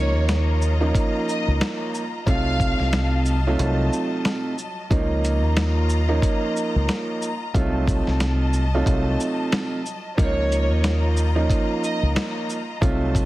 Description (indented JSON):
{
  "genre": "hip hop, boom-bap hip-hop",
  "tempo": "91 BPM",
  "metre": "4/4",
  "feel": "swing 59% on 16ths",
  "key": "Db major",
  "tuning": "A4 = 440 Hz",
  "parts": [
    { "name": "warm studio violin section", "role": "melody", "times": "0.0-3.1, 10.2-12.0 s", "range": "Db5 to F5", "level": "-29 LUFS", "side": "equal", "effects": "high-pass filter, low-pass filter, ping-pong delay" },
    { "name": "warm upright piano", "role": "accompaniment", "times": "0.0-13.3 s", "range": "C3 to F4", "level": "-25 LUFS", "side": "right 2 dB", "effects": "cassette tape, high-pass filter, low-pass filter" },
    { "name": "clear studio string section", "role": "sustained chords", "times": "0.0-13.3 s", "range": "Gb3 to Bb5", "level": "-32 LUFS", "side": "left 2 dB", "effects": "high-pass filter, low-pass filter" },
    { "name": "deep dub fingered electric bass", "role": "bass", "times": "0.0-13.3 s", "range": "C2 to Eb2", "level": "-21 LUFS", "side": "equal", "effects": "none" },
    { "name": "dusty soul sampler-style drum kit", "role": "drums", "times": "0.3-13.3 s", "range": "hi-hat, kick drum, shaker, snare drum", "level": "-24 LUFS", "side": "equal", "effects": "vintage 12-bit sampler grit" }
  ],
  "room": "light reverb, small room ambience",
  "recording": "heavily compressed radio sound, multiband compression, vinyl crackle",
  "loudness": "-19 LUFS",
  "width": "side -17 dB against mid",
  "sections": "0.0-13.3 A section",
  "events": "none",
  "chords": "0.0 Db69; 2.3 F7b9/C; 4.9 Db69; 7.5 F7b9/C; 10.2 Db69"
}